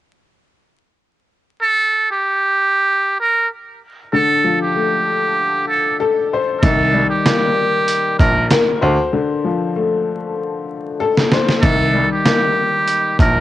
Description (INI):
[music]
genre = hip hop, boom-bap hip-hop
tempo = 96 BPM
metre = 4/4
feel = swing 54% on 16ths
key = C dorian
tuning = A4 = 440 Hz
[part]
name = trumpet with metal mute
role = melody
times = 1.6-13.4 s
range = G4 to Bb4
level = -16 LUFS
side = right 2 dB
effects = cassette tape, tape echo
[part]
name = warm upright piano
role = accompaniment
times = 4.1-13.4 s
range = D3 to C5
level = -18 LUFS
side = left 4 dB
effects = none
[part]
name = clear baby grand piano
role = bass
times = 6.6-13.4 s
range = Bb1 to D2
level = -18 LUFS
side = right 1 dB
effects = none
[part]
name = trip hop sampler-style drum kit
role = drums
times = 6.6-13.4 s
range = handclaps, hi-hat, kick drum, snare drum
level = -16 LUFS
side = right 1 dB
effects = cassette tape
[sound]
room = light reverb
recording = home recording on cassette, vinyl crackle, nothing above 10.9 kHz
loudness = -14 LUFS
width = side -14 dB against mid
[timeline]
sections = 1.6-11.6 A section; 11.6-13.4 B section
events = break 9.1-11.6; drum fill 10.4-11.6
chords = 1.6 N.C.; 3.8 Dm; 6.6 Cm7; 8.8 Dm7; 11.6 Cm7